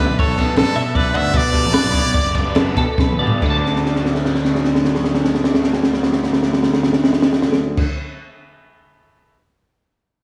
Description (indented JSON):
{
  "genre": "math rock and midwest emo",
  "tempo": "134-158 BPM",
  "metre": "5/4",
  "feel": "straight",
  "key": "D major",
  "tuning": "A4 = 440 Hz",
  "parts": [
    { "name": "brilliant trumpet", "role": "melody", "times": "0.0-3.0 s", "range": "A4 to E5", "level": "-24 LUFS", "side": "equal", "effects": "slapback echo, analog delay" },
    { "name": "twelve-string electric guitar", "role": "arpeggios", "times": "0.0-7.9 s", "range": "A4 to D6", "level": "-27 LUFS", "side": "equal", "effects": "spring reverb, slapback echo" },
    { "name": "biting overdriven guitar", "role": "riff", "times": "0.0-7.9 s", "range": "B2 to D4", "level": "-26 LUFS", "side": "equal", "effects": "phaser, slapback echo" },
    { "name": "fuzz fingered electric bass", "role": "bass", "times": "0.0-7.8 s", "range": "F#1 to B2", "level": "-24 LUFS", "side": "equal", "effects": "overdrive" },
    { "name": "compact cocktail drum kit", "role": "drums", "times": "0.0-9.3 s", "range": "crash cymbal, kick drum, ride cymbal, snare drum, toms", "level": "-20 LUFS", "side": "equal", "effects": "none" }
  ],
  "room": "moderate lush hall reverb, RT60 1.6 s, small room ambience",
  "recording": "big arena sound",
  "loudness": "-17 LUFS",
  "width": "mono",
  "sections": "0.0-3.4 A section; 3.4-7.9 B section",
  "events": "slowing down 0.2-3.4; drum fill 3.0-3.4, 3.6-7.8",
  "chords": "0.0 Gmaj7/B; 3.4 D"
}